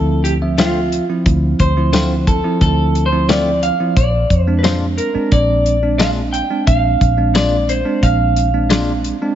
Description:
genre	straight-eighth soul blues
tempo	89 BPM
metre	4/4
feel	straight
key	unclear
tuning	A4 = 440 Hz
part	electric guitar through a small old amp	melody	0.0-9.0 s	F4 to G5	-19 LUFS	right 1 dB	none
part	bell-like tine electric piano	accompaniment	0.0-9.3 s	F3 to E5	-20 LUFS	right 3 dB	fast stereo tremolo
part	vintage muted fingered electric bass	bass	0.0-9.1 s	Bb1 to F2	-17 LUFS	equal	none
part	damped 70s drum kit	drums	0.2-9.2 s	hi-hat, kick drum, snare drum, tambourine	-18 LUFS	left 1 dB	none
part	direct-recorded clean electric guitar	stabs	0.6-8.9 s	Bb2 to F4	-23 LUFS	left 5 dB	none
room	light reverb, small room reverb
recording	nothing above 7.7 kHz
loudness	-13 LUFS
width	side -11 dB against mid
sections	0.0-9.3 A section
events	none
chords	0.0 Dm7; 4.0 Bb7

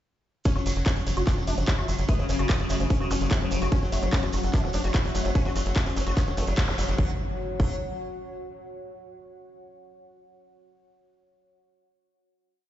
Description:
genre	psychedelic trance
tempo	147 BPM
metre	4/4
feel	straight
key	unclear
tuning	A4 = 439 Hz
part	sitar	melody	0.5-7.7 s	C#3 to E4	-33 LUFS	left 2 dB	phaser, sidechain pumping, dub echo
part	pulsing gated texture	sustained chords	1.1-7.0 s	F#3 to C#4	-37 LUFS	left 2 dB	chorus, built-in reverb, sidechain pumping
part	woody wave-folded pluck	riff	0.5-7.8 s	E3 to F#4	-35 LUFS	moving between left 4 dB and right 2 dB	chorus, auto-pan, sidechain pumping, dub echo
part	electronic kick drum	drums	0.5-7.7 s	none	-22 LUFS	equal	none
part	garage drum kit	drums	0.5-7.0 s	handclaps, hi-hat	-34 LUFS	equal	none
part	shekere	percussion	0.5-7.0 s	none	-39 LUFS	right 4 dB	none
part	deep dark ambient pad	texture	2.0-8.6 s	F#4 to F#5	-37 LUFS	left 1 dB	chorus, built-in reverb, sidechain pumping
part	tight sequencer bass	bass	0.6-7.8 s	E1 to F#1	-28 LUFS	equal	none
part	zap and impact	sound effects	3.1-3.2, 6.7-8.6 s	none	-35 LUFS	equal	none
room	light reverb, digital ambience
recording	played on a big sound system in a bare room, large studio reverb, nothing above 7.8 kHz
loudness	-23 LUFS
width	side -12 dB against mid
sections	0.5-7.0 groove; 7.0-8.6 final chord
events	filter sweep on synth arpeggio sound 0.5-7.0; band accent 6.6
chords	0.5 F#5

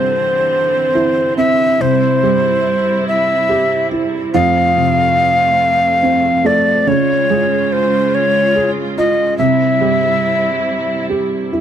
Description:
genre	children's music, lullaby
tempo	47 BPM (dotted quarters)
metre	6/8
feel	straight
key	unclear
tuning	A4 = 439 Hz
part	breathy mellow tenor recorder	melody	0.0-11.1 s	C5 to F5	-14 LUFS	left 1 dB	none
part	felt-muted upright piano	accompaniment	0.0-11.6 s	F2 to Ab4	-17 LUFS	right 3 dB	none
part	rich symphonic string section	sustained chords	0.0-11.6 s	F2 to F4	-22 LUFS	right 1 dB	none
room	light reverb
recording	close, detailed microphones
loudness	-12 LUFS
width	side -9 dB against mid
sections	0.0-11.6 A section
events	none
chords	0.0 Cadd9; 1.8 C; 4.3 F; 6.9 Db; 9.4 C

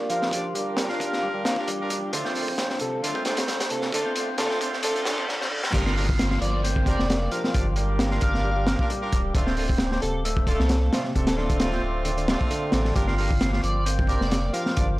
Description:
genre	breakbeat, breaks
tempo	133 BPM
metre	4/4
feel	swing 54% on 16ths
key	G minor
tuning	A4 = 439 Hz
part	airy dreamy lead	melody	0.0-14.7 s	F4 to F5	-31 LUFS	equal	chorus, small speaker sound, tape echo
part	dark analog pad	sustained chords	0.0-15.0 s	D4 to D6	-35 LUFS	equal	chorus, phaser, sidechain pumping
part	riser, reverse cymbal and downlifter	sound effects	2.0-9.3 s	none	-36 LUFS	equal	none
part	overdriven tonewheel organ	riff	0.1-15.0 s	C3 to F4	-31 LUFS	equal	slow rotary speaker, tube saturation, vintage 12-bit sampler grit, low-pass filter, tape echo
part	brilliant horn section	stabs	0.1-14.9 s	A3 to D5	-32 LUFS	right 1 dB	vintage 12-bit sampler grit, tape echo
part	crunchy breakbeat drum kit	drums	0.1-14.9 s	crash cymbal, hi-hat, kick drum, snare drum	-25 LUFS	equal	high-pass filter on kick, high-pass filter on hats, high-pass filter on cymbals, high-pass filter on snare, high-pass filter on room
part	saturated sub bass	bass	5.7-15.0 s	D1 to C2	-26 LUFS	equal	none
room	light reverb, studio reverb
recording	dry, gritty hardware recording, transformer saturation, high-pass filter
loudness	-22 LUFS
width	side -18 dB against mid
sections	0.0-5.7 A section; 5.7-15.0 B section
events	build-up 0.0-5.7; filter sweep on tonewheel organ 0.0-5.7; filter sweep on digital synth lead 0.0-5.7; filter sweep 0.0-5.7; riser 2.0-5.3; reverse cymbal 4.8-5.7; drum fill 5.3-5.7; drop 5.7-15.0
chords	0.0 Gm7; 2.1 Dm7; 5.7 Gm7; 9.3 Dm7; 13.0 Gm7

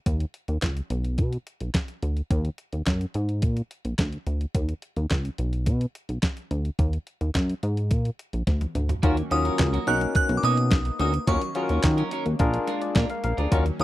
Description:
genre	early-eighties boogie funk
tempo	107 BPM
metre	4/4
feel	straight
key	Eb minor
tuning	A4 = 440 Hz
part	chorused synth bass	bass	0.1-13.8 s	Bb1 to Eb3	-25 LUFS	equal	none
part	crisp 8-bit digital drum machine	drums	0.1-13.8 s	handclaps, hi-hat, kick drum, snare drum, toms	-24 LUFS	equal	none
part	barky tine electric piano	accompaniment	9.0-13.8 s	Db4 to F5	-28 LUFS	left 3 dB	none
part	brassy analog pad	sustained chords	9.0-13.8 s	Eb3 to D#4	-36 LUFS	equal	none
part	clean electric guitar	riff	9.0-13.8 s	Gb3 to Db5	-33 LUFS	right 5 dB	lush chorus
part	glassy synth bell	melody	9.3-13.8 s	Db6 to F#6	-28 LUFS	right 1 dB	chorus
room	little or no reverb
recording	dry, close 1970s-style studio recording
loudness	-23 LUFS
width	side -16 dB against mid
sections	0.0-9.0 A section; 9.0-13.8 B section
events	drum fill 8.5-9.0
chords	0.1 Dbsus2; 0.9 Bm; 2.3 Ebm; 3.4 Bb; 4.5 Dbsus2; 5.4 Bm; 6.8 Ebm; 7.9 Bb; 9.0 Ebm7; 9.9 Bmaj7; 11.3 Ebm7; 12.4 Bb7

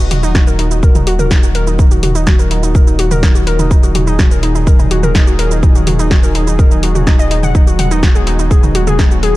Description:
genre	melodic techno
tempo	125 BPM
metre	4/4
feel	straight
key	Eb minor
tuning	A4 = 440 Hz
part	warm analog pad	sustained chords	0.0-9.4 s	Bb2 to Ab4	-20 LUFS	left 1 dB	chorus, sidechain pumping
part	warbly dusty pluck	arpeggios	0.0-9.3 s	Eb4 to Gb5	-18 LUFS	left 1 dB	chorus, sidechain pumping, ping-pong delay
part	round analog bass	bass	0.0-9.4 s	Eb1	-16 LUFS	equal	sidechain pumping
part	house drum kit	drums	0.1-9.3 s	hi-hat, shaker, snare drum, toms	-19 LUFS	right 1 dB	none
part	electronic kick drum	drums	0.3-9.1 s	none	-9 LUFS	equal	none
room	little or no reverb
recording	dark, warm production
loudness	-9 LUFS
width	side -17 dB against mid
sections	0.0-9.4 A section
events	none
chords	0.0 Ebm; 7.5 B6/D#

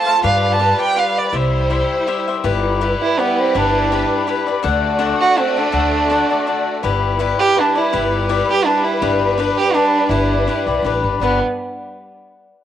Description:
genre	mexican folk, mariachi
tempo	165 BPM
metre	3/4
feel	swing 54% on 8ths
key	G major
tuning	A4 = 440 Hz
part	dark violin	melody	0.0-11.4 s	B3 to A5	-18 LUFS	right 4 dB	cassette tape
part	cavaquinho	accompaniment	0.0-11.4 s	D4 to F#5	-20 LUFS	left 8 dB	cassette tape
part	warm studio violin section	sustained chords	0.0-11.4 s	G3 to D5	-22 LUFS	equal	cassette tape
part	upright bass	bass	0.2-11.4 s	G1 to G2	-22 LUFS	left 1 dB	none
room	moderate spring reverb, RT60 2.0 s, studio ambience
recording	home recording on cassette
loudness	-14 LUFS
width	side -10 dB against mid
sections	0.0-2.4 A section; 2.4-11.2 B section; 11.2-12.3 C section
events	none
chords	0.2 G7; 1.3 C; 2.4 G6; 4.6 D; 6.8 G6; 9.0 G

